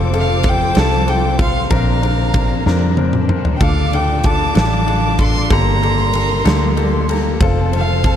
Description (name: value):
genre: six-eight pop ballad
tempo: 63 BPM (dotted quarters)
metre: 6/8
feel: straight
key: unclear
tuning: A4 = 440 Hz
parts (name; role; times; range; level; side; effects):
- warm studio violin section; second line; 0.0-8.2 s; A5 to D6; -27 LUFS; right 2 dB; none
- clear baby grand piano; accompaniment; 0.0-8.2 s; Bb3 to Bb4; -22 LUFS; left 8 dB; analog delay
- warm studio string section; sustained chords; 0.0-8.2 s; D3 to C5; -26 LUFS; right 2 dB; none
- fingered electric bass; bass; 0.0-8.2 s; F1 to F2; -17 LUFS; right 1 dB; none
- huge arena drum kit; drums; 0.1-8.2 s; kick drum, ride cymbal, snare drum, toms; -18 LUFS; equal; none
- warm violin; melody; 0.2-8.2 s; F5 to C6; -21 LUFS; equal; analog delay
room: light reverb, studio ambience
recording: echo-heavy mix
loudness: -13 LUFS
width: side -9 dB against mid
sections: 0.0-8.2 A section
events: drum fill 2.7-3.6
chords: 0.0 F; 1.7 Bbadd9; 3.6 Dm; 5.5 Gmadd9; 7.4 F